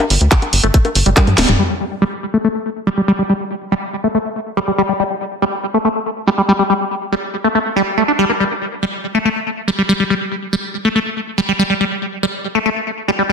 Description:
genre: psychedelic trance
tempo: 141 BPM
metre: 4/4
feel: straight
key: unclear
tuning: A4 = 441 Hz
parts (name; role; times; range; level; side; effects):
- drum and bass drum kit; drums; 0.0-1.6 s; bongos, handclaps, hi-hat, snare drum, toms; -15 LUFS; equal; none
- tight sequencer bass; bass; 0.1-1.6 s; D1 to G2; -14 LUFS; equal; none
- liquid acid bass; riff; 0.3-13.3 s; G3 to D4; -16 LUFS; equal; phaser, auto-pan, sidechain pumping, tape echo
- electronic kick drum; drums; 0.3-1.3 s; none; -13 LUFS; equal; none
room: moderate digital room reverb, RT60 1.1 s, digital ambience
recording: dense, heavily limited modern master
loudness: -14 LUFS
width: side -6 dB against mid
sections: 0.0-1.6 A section; 1.6-13.3 B section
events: filter sweep on acid bass 0.0-1.6, 1.6-13.3; drum fill 1.3-1.6; band accent 1.4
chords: 0.0 G5

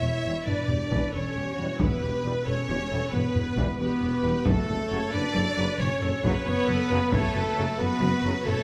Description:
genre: cinematic, epic orchestral film score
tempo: 90 BPM (dotted quarters)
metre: 12/8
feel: straight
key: E dorian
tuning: A4 = 438 Hz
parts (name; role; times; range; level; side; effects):
- rich symphonic violin section; melody; 0.0-8.6 s; A4 to E5; -38 LUFS; equal; none
- mellow small flute group; second line; 0.0-8.6 s; A4 to E5; -37 LUFS; equal; none
- warm symphonic violin section; second line; 0.0-8.6 s; A4 to E5; -39 LUFS; equal; none
- clear symphonic viola section; accompaniment; 0.0-8.6 s; E4 to C#5; -38 LUFS; equal; none
- mellow French horn section; sustained chords; 0.0-8.6 s; A3 to E4; -32 LUFS; equal; none
- mellow tuba; bass; 0.0-8.6 s; E1 to F#1; -37 LUFS; equal; none
- rich symphonic cello section; bass; 0.0-8.5 s; E2 to F#2; -35 LUFS; equal; none
- warm symphonic double bass section; bass; 0.0-8.5 s; E1 to F#1; -35 LUFS; equal; none
- mellow trombone section; sustained chords; 0.2-8.3 s; C#3 to G3; -41 LUFS; equal; none
- taiko ensemble; drums; 0.5-8.6 s; none; -32 LUFS; equal; none
room: wet recital hall reverb, RT60 1.7 s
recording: none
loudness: -26 LUFS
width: mono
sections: 0.0-8.6 A section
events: none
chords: 0.0 Em; 4.5 F#m

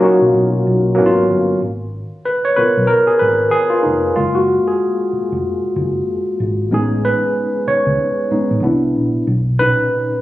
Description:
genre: R&B, neo-soul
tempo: 94 BPM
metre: 4/4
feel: swing 60% on 16ths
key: G# dorian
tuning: A4 = 441 Hz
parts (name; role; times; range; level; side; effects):
- barky tine electric piano; accompaniment; 0.0-10.2 s; A#2 to C#5; -14 LUFS; equal; medium stereo tremolo
- vintage muted fingered electric bass; bass; 0.0-9.7 s; E#1 to B2; -21 LUFS; equal; none
room: light reverb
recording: recorded on a phone in the room, club reverb, compression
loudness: -14 LUFS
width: side -15 dB against mid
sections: 0.0-1.6 A section; 1.6-10.2 B section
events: tine electric piano solo 1.6-10.2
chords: 0.0 Bmaj7; 1.0 G#m11; 1.6 G#m69; 4.2 F#maj9; 6.7 Amaj9#11; 8.6 Cmaj7; 9.3 Bmaj7

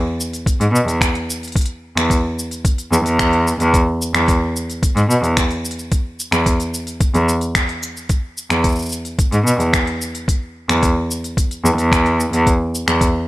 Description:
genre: folktronica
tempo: 110 BPM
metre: 4/4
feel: straight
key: E major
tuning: A4 = 439 Hz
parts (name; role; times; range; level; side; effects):
- organic electronic drum kit; drums; 0.2-13.1 s; cabasa, finger snaps, hi-hat; -22 LUFS; equal; none
- electronic kick drum; drums; 0.5-13.1 s; none; -17 LUFS; equal; none
- rich cello; bass; 0.6-13.0 s; E2 to B2; -17 LUFS; equal; tube saturation
room: little or no reverb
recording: none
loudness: -15 LUFS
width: side -17 dB against mid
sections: 0.0-13.3 A section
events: none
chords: none

